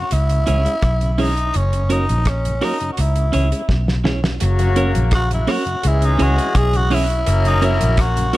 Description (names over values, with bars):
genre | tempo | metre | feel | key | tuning
roots reggae | 84 BPM | 4/4 | straight | F# mixolydian | A4 = 436 Hz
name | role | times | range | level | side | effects
growling tenor saxophone | melody | 0.0-8.4 s | C#4 to G#4 | -22 LUFS | equal | tape echo
tonewheel organ | accompaniment | 0.0-8.4 s | F#2 to C#4 | -28 LUFS | left 2 dB | overdrive, chorus vibrato, slow rotary speaker
vintage muted fingered electric bass | bass | 0.1-8.3 s | F#1 to C#2 | -18 LUFS | equal | none
damped 70s drum kit | drums | 0.1-8.4 s | hi-hat, kick drum, rim click, snare drum | -22 LUFS | equal | tape echo
clean electric guitar | accompaniment | 0.5-8.4 s | C#4 to C#5 | -25 LUFS | right 4 dB | tape echo
warm horn section | second line | 4.4-8.3 s | C#3 to A#4 | -24 LUFS | left 4 dB | tape echo
room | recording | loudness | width
little or no reverb | none | -15 LUFS | side -17 dB against mid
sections
0.0-4.4 A section; 4.4-8.4 B section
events
drum fill 3.7-4.4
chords
0.1 C#m; 1.5 F#; 3.0 C#m; 4.4 F#; 5.8 C#m; 7.3 F#